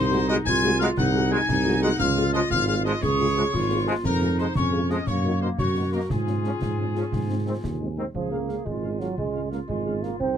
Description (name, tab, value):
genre	military-style march for wind band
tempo	117 BPM (dotted quarters)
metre	6/8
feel	straight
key	Db major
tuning	A4 = 441 Hz
part	bright trumpet section	melody	0.0-10.1 s	Ab4 to Ab5	-31 LUFS	left 3 dB	none
part	mellow hollow piccolo	second line	0.0-8.0 s	Ab5 to Ab6	-30 LUFS	left 4 dB	none
part	warm woodwind section	second line	0.0-10.4 s	Bb3 to Ab4	-29 LUFS	left 1 dB	none
part	mellow tuba	bass	0.0-10.4 s	Ab1 to Ab2	-26 LUFS	right 3 dB	none
part	dark French horn section	accompaniment	0.1-10.1 s	Ab3 to Ab4	-30 LUFS	left 3 dB	none
part	concert snare drum, concert bass drum and clash cymbals	drums	0.1-10.3 s	none	-32 LUFS	left 1 dB	none
part	clear trombone section	sustained chords	0.3-8.0 s	Eb3 to Db4	-30 LUFS	right 1 dB	none
part	clear euphonium	second line	8.0-10.4 s	Eb3 to C4	-29 LUFS	right 6 dB	none
room	moderate booth ambience, RT60 0.2 s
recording	dark, warm production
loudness	-22 LUFS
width	side -9 dB against mid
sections	0.0-8.1 A section; 8.1-10.4 B section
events	none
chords	0.0 Ab7/C; 2.0 Db; 4.0 Db/F; 5.1 Ebm7/Gb; 6.1 Db/Ab; 7.1 Ab; 8.1 Db